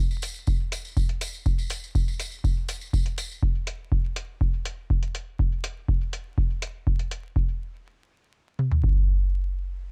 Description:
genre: dub techno.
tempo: 122 BPM.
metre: 4/4.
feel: straight.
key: none.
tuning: none.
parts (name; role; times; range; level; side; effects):
tambourine; percussion; 0.1-3.4 s; none; -40 LUFS; equal; none.
electronic hi-hat; drums; 0.2-7.2 s; none; -38 LUFS; equal; none.
booming analog drum machine; drums; 0.5-9.0 s; kick drum, toms; -26 LUFS; equal; none.
room: digital ambience.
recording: dark, warm production, vinyl crackle.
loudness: -27 LUFS.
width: mono.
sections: 0.0-7.4 A section; 7.4-9.9 B section.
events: none.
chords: none.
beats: 0.47 0.97 | 1.46 1.95 2.44 2.93 | 3.42 3.92 4.41 4.90 | 5.39 5.88 6.38 6.87 | 7.36 7.85 8.34 8.84.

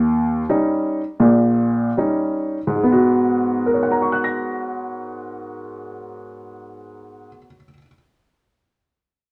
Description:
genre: solo jazz.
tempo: 70-90 BPM.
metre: 4/4.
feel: swing 68% on 8ths, rubato.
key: G# minor.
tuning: A4 = 441 Hz.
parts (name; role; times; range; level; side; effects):
clear grand piano; solo; 0.0-7.9 s; A#1 to A#6; -20 LUFS; equal; none.
room: moderate studio reverb, RT60 0.8 s.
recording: none.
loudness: -19 LUFS.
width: mono.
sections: 0.0-2.8 A section; 2.8-6.2 B section.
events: slowing down 0.0-2.8.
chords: 0.0 D#7; 2.8 G#m7.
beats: 0.50 1.22 1.99 | 2.82 3.67 4.50 5.33.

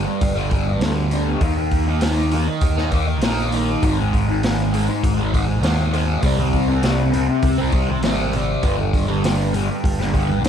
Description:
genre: psychedelic rock.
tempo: 100 BPM.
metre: 4/4.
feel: straight.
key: C minor.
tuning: A4 = 442 Hz.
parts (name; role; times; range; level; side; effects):
fuzz guitar; riff; 0.0-10.5 s; G2 to Eb4; -20 LUFS; equal; distortion, phaser.
modern bright picked electric bass; bass; 0.0-10.5 s; G1 to Eb2; -22 LUFS; equal; none.
crunchy breakbeat drum kit; drums; 0.2-10.5 s; hi-hat, kick drum, snare drum; -23 LUFS; equal; none.
congas; percussion; 6.4-10.4 s; none; -34 LUFS; right 2 dB; none.
room: light reverb, small room ambience.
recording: none.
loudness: -17 LUFS.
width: side -8 dB against mid.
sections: 0.0-10.5 A section.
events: none.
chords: 0.0 G5; 1.4 Eb5; 3.8 Ab5; 6.2 C5; 8.6 G5.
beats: 0.22 0.82 | 1.43 2.03 2.63 3.23 | 3.83 4.43 5.03 5.63 | 6.24 6.84 7.44 8.04 | 8.64 9.24 9.84 10.44.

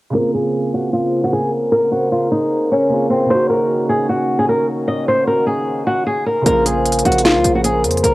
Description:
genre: hip hop, trap.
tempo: 152 BPM.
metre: 4/4.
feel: half-time.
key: Bb minor.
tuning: A4 = 439 Hz.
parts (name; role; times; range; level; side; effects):
flamenco guitar; melody; 0.1-8.1 s; C4 to Eb5; -16 LUFS; equal; low-pass filter, cassette tape.
dark baby grand piano; accompaniment; 0.1-8.1 s; Db3 to C5; -22 LUFS; right 2 dB; low-pass filter, cassette tape.
dark French horn section; sustained chords; 0.1-8.1 s; Db3 to C5; -22 LUFS; left 1 dB; low-pass filter, cassette tape.
hard-hitting 808-style bass; bass; 6.5-8.1 s; Bb1 to F2; -21 LUFS; equal; none.
trap drum kit; drums; 6.5-8.1 s; handclaps, hi-hat, snare drum; -19 LUFS; equal; none.
room: moderate spring reverb, RT60 1.5 s, small room ambience.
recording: home recording on cassette.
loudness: -14 LUFS.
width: side -18 dB against mid.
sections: 0.1-6.5 A section; 6.5-8.1 B section.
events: filter sweep 0.1-6.5.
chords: 0.1 Bbmadd9; 3.3 Ebm7; 6.5 Bbmadd9.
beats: | 0.14 0.54 0.93 1.33 | 1.72 2.12 2.51 2.91 | 3.30 3.70 4.09 4.49 | 4.88 5.28 5.67 6.07 | 6.46 6.85 7.25 7.64 | 8.04.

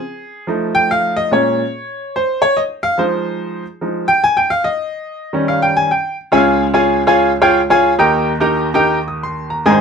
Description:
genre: gospel.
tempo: 144 BPM.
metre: 4/4.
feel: swing 62% on 8ths.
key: unclear.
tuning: A4 = 440 Hz.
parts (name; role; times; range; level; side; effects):
clear baby grand piano; solo; 0.0-9.8 s; Ab1 to Eb6; -13 LUFS; equal; none.
room: moderate small room reverb, RT60 0.5 s.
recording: band playing live in one room.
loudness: -13 LUFS.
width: side -6 dB against mid.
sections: 0.0-6.3 A section; 6.3-9.8 B section.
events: grand piano solo 0.0-6.3.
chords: 0.5 F7; 1.3 Bbm7; 3.0 Fm7; 4.7 Eb7; 6.3 Db; 8.0 Eb.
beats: 0.06 0.48 0.90 | 1.31 1.73 2.15 2.56 | 2.98 3.40 3.82 4.23 | 4.65 5.07 5.49 5.90 | 6.32 6.74 7.15 7.57 | 7.99 8.40 8.82 9.23 | 9.65.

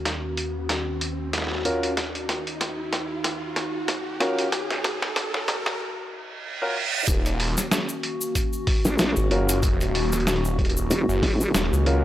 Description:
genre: glitch hop.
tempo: 94 BPM.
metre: 4/4.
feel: swing 57% on 16ths.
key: Eb minor.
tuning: A4 = 442 Hz.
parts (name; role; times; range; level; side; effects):
warbly tape-like pad; sustained chords; 0.0-12.0 s; Eb2 to Gb4; -30 LUFS; left 1 dB; chorus, built-in reverb, sidechain pumping.
riser and reverse cymbal; sound effects; 0.1-7.1 s; none; -32 LUFS; right 3 dB; none.
boom bap sampler-style drum kit; drums; 0.1-12.0 s; hi-hat, snare drum; -27 LUFS; equal; high-pass filter on hats, high-pass filter on snare, high-pass filter on room.
warm concert grand piano; stabs; 1.7-12.0 s; Db4 to Bb4; -28 LUFS; equal; sidechain pumping, analog delay.
phased detuned saw bass; bass; 7.1-12.0 s; Eb1 to Db2; -24 LUFS; equal; phaser, tube saturation.
electronic kick drum; drums; 7.1-11.4 s; none; -24 LUFS; equal; none.
cabasa; percussion; 7.1-11.8 s; none; -32 LUFS; left 2 dB; none.
vowel-sweep wobble bass; bass; 8.8-11.5 s; Eb1 to Bb1; -22 LUFS; equal; chorus.
room: light reverb, digital ambience.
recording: dry, gritty hardware recording, transformer saturation, high-pass filter.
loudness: -22 LUFS.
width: side -13 dB against mid.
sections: 0.0-7.1 A section; 7.1-12.0 B section.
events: build-up 0.0-7.1; drum fill 0.0-5.8; filter sweep on grand piano 0.0-7.1; filter sweep on ambient pad 0.0-7.1; riser 0.1-5.8; reverse cymbal 5.8-7.1; drop 7.1-12.0.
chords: 0.0 Ebm7.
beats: 0.06 0.69 1.33 | 1.97 2.61 3.25 3.88 | 4.52 5.16 5.80 6.44 | 7.08 7.71 8.35 8.99 | 9.63 10.27 10.91 11.54.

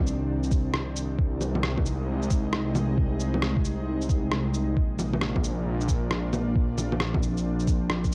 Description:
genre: future garage.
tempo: 134 BPM.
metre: 4/4.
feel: swing 64% on 16ths.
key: unclear.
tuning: A4 = 444 Hz.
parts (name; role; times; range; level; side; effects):
ethereal airy pad; sustained chords; 0.0-8.1 s; C3 to Eb4; -33 LUFS; equal; ensemble chorus, built-in reverb, sidechain pumping, cassette tape.
swelling detuned saw bass; bass; 0.0-8.1 s; Bb1 to C2; -31 LUFS; equal; sidechain pumping.
electronic shaker, rim click and bongos; drums; 0.1-8.1 s; none; -33 LUFS; equal; cassette tape.
electronic kick drum; drums; 0.5-8.1 s; none; -28 LUFS; equal; cassette tape.
room: light reverb.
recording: home recording on cassette.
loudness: -27 LUFS.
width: mono.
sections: 0.0-8.1 A section.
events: none.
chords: 0.0 Cmadd9; 1.2 Ab/C; 4.8 Bb.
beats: 0.29 0.74 | 1.18 1.63 2.08 2.53 | 2.98 3.42 3.87 4.32 | 4.77 5.21 5.66 6.11 | 6.56 7.00 7.45 7.90.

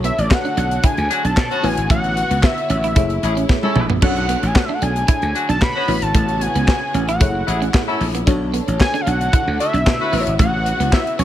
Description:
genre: early-eighties boogie funk.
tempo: 113 BPM.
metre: 4/4.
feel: straight.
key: B dorian.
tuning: A4 = 438 Hz.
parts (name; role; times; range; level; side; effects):
fat analog lead; melody; 0.0-11.2 s; D5 to B5; -22 LUFS; equal; slapback echo.
FM electric piano with soft pad layer; accompaniment; 0.0-11.2 s; C#4 to C#5; -27 LUFS; left 3 dB; chorus.
warm symphonic string section; sustained chords; 0.0-11.2 s; A2 to F#4; -30 LUFS; left 1 dB; none.
clean electric guitar; riff; 0.0-11.2 s; A3 to E4; -26 LUFS; right 6 dB; lush chorus.
slap bass; bass; 0.0-11.2 s; F#1 to B2; -21 LUFS; equal; none.
tight funk drum kit; drums; 0.0-11.2 s; crash cymbal, handclaps, hi-hat, kick drum, snare drum, toms; -18 LUFS; equal; none.
clear horn section; second line; 1.1-10.3 s; F#3 to B4; -25 LUFS; left 2 dB; none.
room: small room ambience.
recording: none.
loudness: -15 LUFS.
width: side -12 dB against mid.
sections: 0.0-11.2 A section.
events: drum fill 3.5-4.0.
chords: 0.0 Bm9; 1.6 A69; 3.0 F#m9; 4.0 Bm9; 5.9 A69; 7.2 F#m9; 8.3 Bm9; 10.1 A69.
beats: 0.31 0.84 1.37 | 1.90 2.43 2.96 3.49 | 4.02 4.55 5.08 5.62 | 6.15 6.68 7.21 7.74 | 8.27 8.80 9.33 9.86 | 10.39 10.93.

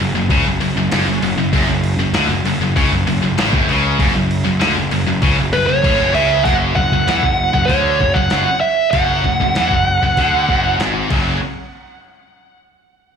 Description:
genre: heavy metal.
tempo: 97 BPM.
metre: 4/4.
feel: straight.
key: unclear.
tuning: A4 = 439 Hz.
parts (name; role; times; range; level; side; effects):
heavy high-gain guitar; riff; 0.0-11.4 s; F#2 to F#3; -18 LUFS; left 1 dB; distortion, slapback echo.
fuzz picked electric bass; bass; 0.0-11.4 s; F#1 to E2; -19 LUFS; equal; overdrive.
boom bap sampler-style drum kit; drums; 0.0-11.3 s; crash cymbal, hi-hat, kick drum, snare drum; -21 LUFS; equal; none.
high-gain lead guitar; melody; 5.5-10.7 s; B4 to F#5; -16 LUFS; right 2 dB; distortion, slapback echo, ping-pong delay.
room: digital ambience.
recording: live gig heard through the venue's PA, club reverb.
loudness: -13 LUFS.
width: side -7 dB against mid.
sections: 0.0-6.5 A section; 6.5-11.4 B section; 11.4-13.2 C section.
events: kick and snare drop out 5.2-6.5, 11.1-11.4.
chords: 0.0 F#5; 6.5 E9/F#; 11.1 F#5; 11.4 N.C..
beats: 0.30 0.92 | 1.53 2.15 2.76 3.38 | 3.99 4.61 5.23 5.84 | 6.46 7.08 7.70 8.32 | 8.94 9.56 10.18 10.80.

